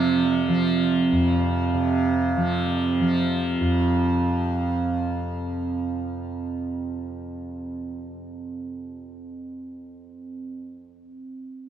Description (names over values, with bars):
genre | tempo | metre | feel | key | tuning
world meditative, free-time meditation music | free time | none | none | unclear | A4 = 440 Hz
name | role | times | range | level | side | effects
tanpura | drone | 0.0-10.8 s | F2 to F3 | -25 LUFS | equal | none
quartz singing bowl | texture | 0.0-4.0 s | C4 | -26 LUFS | right 4 dB | none
room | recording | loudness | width
wet huge ambient reverb, RT60 6.2 s | none | -21 LUFS | side -10 dB against mid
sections
0.0-3.9 A section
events
none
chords
none